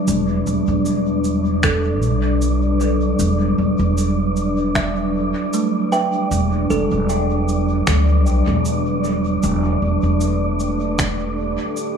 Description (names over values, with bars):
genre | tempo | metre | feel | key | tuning
ambient dub | 77 BPM | 4/4 | swing 54% on 16ths | E minor | A4 = 441 Hz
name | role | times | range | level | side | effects
deep dark ambient pad | sustained chords | 0.0-12.0 s | F#3 to E5 | -21 LUFS | right 1 dB | chorus, built-in reverb
wind-like tuned noise texture | texture | 0.0-12.0 s | D4 to D5 | -26 LUFS | left 2 dB | built-in reverb
upright bass | bass | 0.1-11.5 s | E1 to D2 | -19 LUFS | equal | none
electronic shaker and finger snaps | drums | 0.1-11.9 s | none | -26 LUFS | right 1 dB | studio reverb, dub echo
kalimba | arpeggios | 1.6-10.5 s | A3 to G5 | -26 LUFS | right 2 dB | analog delay
electronic kick drum | drums | 1.6-11.2 s | none | -23 LUFS | equal | overdrive, studio reverb
room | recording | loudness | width
light reverb, digital ambience | echo-heavy mix, studio ambience | -16 LUFS | side -7 dB against mid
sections
0.0-12.0 A section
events
none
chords
0.0 Em9